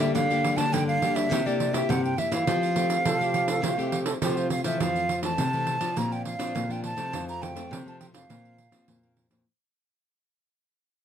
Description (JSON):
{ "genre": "samba and choro", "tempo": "103 BPM", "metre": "4/4", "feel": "straight", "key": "F major", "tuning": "A4 = 440 Hz", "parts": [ { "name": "breathy mellow silver concert flute", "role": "melody", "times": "0.0-9.1 s", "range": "C5 to Bb5", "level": "-28 LUFS", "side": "right 3 dB", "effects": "none" }, { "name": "nylon-string guitar", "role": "accompaniment", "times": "0.0-9.4 s", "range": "F2 to G4", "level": "-30 LUFS", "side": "left 5 dB", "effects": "none" }, { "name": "nylon-string guitar", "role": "bass", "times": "0.0-9.4 s", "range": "F2 to F3", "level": "-30 LUFS", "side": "left 1 dB", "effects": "none" }, { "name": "pandeiro", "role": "percussion", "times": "0.2-9.5 s", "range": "none", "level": "-32 LUFS", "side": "right 5 dB", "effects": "none" }, { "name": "mellow trombone", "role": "second line", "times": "3.1-4.8 s", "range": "F4 to A4", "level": "-32 LUFS", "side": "right 6 dB", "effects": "none" } ], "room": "light reverb", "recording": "close, detailed microphones", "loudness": "-24 LUFS", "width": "side -8 dB against mid", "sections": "0.0-4.8 A section; 4.8-9.5 B section", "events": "fade-out 4.8-9.5", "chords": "0.1 Gm; 1.3 C7; 2.5 Fadd9; 4.8 Fmaj7; 6.0 Bbadd9; 7.1 F; 8.3 Bbsus2", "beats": "| 0.15 0.73 1.31 1.89 | 2.47 3.06 3.64 4.22 | 4.80 5.38 5.96 6.55 | 7.13 7.71 8.30 8.88" }